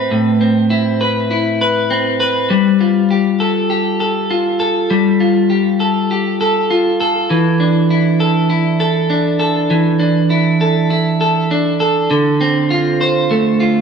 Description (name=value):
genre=dream pop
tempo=100 BPM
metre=4/4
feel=straight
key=unclear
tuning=A4 = 440 Hz
part: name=clean electric guitar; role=solo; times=0.0-13.8 s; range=A2 to C5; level=-12 LUFS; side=equal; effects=wide subtle chorus, ping-pong delay
room=wet lush hall reverb, RT60 1.8 s, digital ambience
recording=dark, warm production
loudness=-12 LUFS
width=side -6 dB against mid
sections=0.0-12.1 A section; 12.1-13.8 B section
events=none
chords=0.0 Amadd9; 2.5 Gsus2; 7.3 E7sus4; 12.1 Dm7